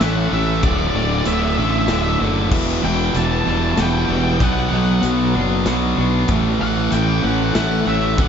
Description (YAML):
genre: post-rock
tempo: 96 BPM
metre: 3/4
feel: straight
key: unclear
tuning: A4 = 440 Hz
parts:
  - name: octave-fuzz lead guitar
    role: melody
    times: 0.0-8.3 s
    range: D5 to A5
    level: -24 LUFS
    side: equal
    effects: distortion, ping-pong delay
  - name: clean electric guitar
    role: arpeggios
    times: 0.0-8.3 s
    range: D2 to F#4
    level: -26 LUFS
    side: left 3 dB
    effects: wide subtle chorus, ping-pong delay
  - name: biting overdriven guitar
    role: riff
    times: 0.0-8.3 s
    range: D2 to B3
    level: -23 LUFS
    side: left 10 dB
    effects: none
  - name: biting overdriven guitar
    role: riff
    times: 0.0-8.3 s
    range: D2 to B3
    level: -21 LUFS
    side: right 8 dB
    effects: none
  - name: fuzz fingered electric bass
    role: bass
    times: 0.0-8.3 s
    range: D1 to B1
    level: -21 LUFS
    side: equal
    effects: overdrive
  - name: big rock drum kit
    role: drums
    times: 0.0-8.3 s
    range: crash cymbal, hi-hat, kick drum, snare drum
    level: -24 LUFS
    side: equal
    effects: none
room: moderate lush hall reverb, RT60 2.1 s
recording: dreamy mix soaked in reverb, nothing above 7.7 kHz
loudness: -15 LUFS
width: side -7 dB against mid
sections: 0.0-8.3 A section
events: none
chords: 0.0 A; 0.6 Dadd9; 2.5 Em; 4.4 Bm; 6.3 A